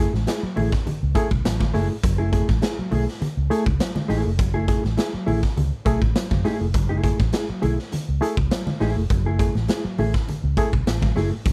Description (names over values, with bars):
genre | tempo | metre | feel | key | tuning
funk | 102 BPM | 4/4 | straight | F# minor | A4 = 442 Hz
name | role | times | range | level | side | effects
barky reed electric piano | stabs | 0.0-11.5 s | F#3 to G#4 | -29 LUFS | equal | overdrive, medium tremolo
vintage muted fingered electric bass | bass | 0.0-11.5 s | E#1 to F#2 | -26 LUFS | equal | none
mellow electric guitar | accompaniment | 0.1-11.5 s | A3 to A4 | -31 LUFS | equal | none
raw garage drum kit | drums | 0.1-11.5 s | hi-hat, kick drum, snare drum | -26 LUFS | equal | none
congas | percussion | 0.1-11.3 s | none | -32 LUFS | equal | none
room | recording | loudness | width
little or no reverb | none | -22 LUFS | mono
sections
0.0-11.5 A section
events
none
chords
0.0 F#m9